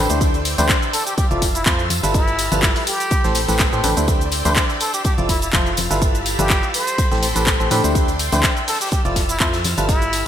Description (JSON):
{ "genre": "piano house", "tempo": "124 BPM", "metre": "4/4", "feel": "swing 54% on 16ths", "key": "unclear", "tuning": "A4 = 438 Hz", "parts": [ { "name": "string machine, violins", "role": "sustained chords", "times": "0.0-10.3 s", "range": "G4 to A6", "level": "-29 LUFS", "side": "equal", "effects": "ensemble chorus, sidechain pumping" }, { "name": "barking FM electric piano", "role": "riff", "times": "0.0-10.0 s", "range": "A2 to D5", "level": "-22 LUFS", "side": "equal", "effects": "chorus, sidechain pumping, digital delay" }, { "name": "organ-like FM bass", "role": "bass", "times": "0.0-10.2 s", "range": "F1 to A2", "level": "-23 LUFS", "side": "equal", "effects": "tube saturation, sidechain pumping" }, { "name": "house drum kit", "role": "drums", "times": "0.1-10.2 s", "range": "handclaps, hi-hat, shaker", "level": "-22 LUFS", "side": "equal", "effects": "studio reverb, gated reverb" }, { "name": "tambourine and congas", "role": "percussion", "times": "0.1-10.2 s", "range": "none", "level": "-28 LUFS", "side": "left 3 dB", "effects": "none" }, { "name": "big rock drum kit", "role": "drums", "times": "0.2-10.3 s", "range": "hi-hat, snare drum", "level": "-32 LUFS", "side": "left 4 dB", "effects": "none" }, { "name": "electronic kick drum", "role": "drums", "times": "0.2-10.0 s", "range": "none", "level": "-20 LUFS", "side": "equal", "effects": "studio reverb" }, { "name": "trumpet with plunger mute", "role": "melody", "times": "0.6-10.3 s", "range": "E4 to C5", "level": "-26 LUFS", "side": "equal", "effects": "digital delay" } ], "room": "moderate lush hall reverb, RT60 2.2 s", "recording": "bright 1980s-style digital production", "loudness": "-16 LUFS", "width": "side -10 dB against mid", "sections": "0.0-10.3 A section", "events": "none", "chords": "0.2 D9sus4; 1.2 Fmaj7; 2.1 G13; 2.9 Am9; 4.1 D9sus4; 5.0 Fmaj7; 6.0 G13; 6.7 Am9; 8.0 D9sus4; 8.9 Fmaj7" }